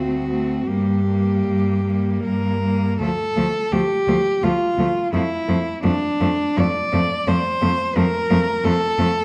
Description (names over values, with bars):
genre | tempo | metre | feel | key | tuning
classical, lyrical piece for cello ensemble | 76-89 BPM | 3/4 | rubato | G minor, D minor from 3.0 s | A4 = 440 Hz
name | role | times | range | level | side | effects
rich cello | melody | 0.0-9.2 s | D4 to D5 | -24 LUFS | equal | none
rich cello | second line | 0.0-9.1 s | A3 to C4 | -30 LUFS | equal | none
rich cello | accompaniment | 0.0-9.1 s | F3 to A3 | -27 LUFS | equal | none
rich cello | bass | 0.0-9.1 s | D2 to G2 | -25 LUFS | equal | none
room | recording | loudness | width
wet recital hall reverb, RT60 1.4 s | dark, warm production, vinyl crackle | -20 LUFS | mono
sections
0.0-3.0 A section; 3.0-9.2 B section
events
none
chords
0.0 D7; 0.7 Gm; 3.0 Dm; 5.1 Dm/F